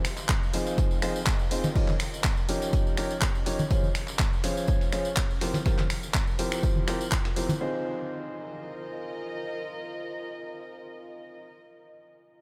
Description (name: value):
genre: piano house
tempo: 123 BPM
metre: 4/4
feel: swing 54% on 16ths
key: F minor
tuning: A4 = 436 Hz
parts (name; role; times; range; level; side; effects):
- dusty soul sampler-style drum kit; drums; 0.0-7.6 s; hi-hat, snare drum; -45 LUFS; equal; none
- house drum kit; drums; 0.0-7.5 s; finger snaps, handclaps, hi-hat; -36 LUFS; equal; none
- dark chamber string section; texture; 0.0-11.6 s; F3 to G5; -44 LUFS; equal; sidechain pumping
- tambourine and congas; percussion; 0.2-7.6 s; none; -39 LUFS; equal; none
- electronic kick drum; drums; 0.3-7.2 s; none; -29 LUFS; equal; none
- warm baby grand piano; riff; 0.5-11.4 s; F3 to Db5; -35 LUFS; equal; vintage 12-bit sampler grit, sidechain pumping, diffuse ambient delay
room: light reverb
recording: none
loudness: -28 LUFS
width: mono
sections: 0.0-7.6 A section; 7.6-11.5 B section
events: none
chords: 0.0 Fm7; 1.8 Eb7/F; 3.7 Dbmaj7/F; 5.4 C7/F; 7.6 Fm7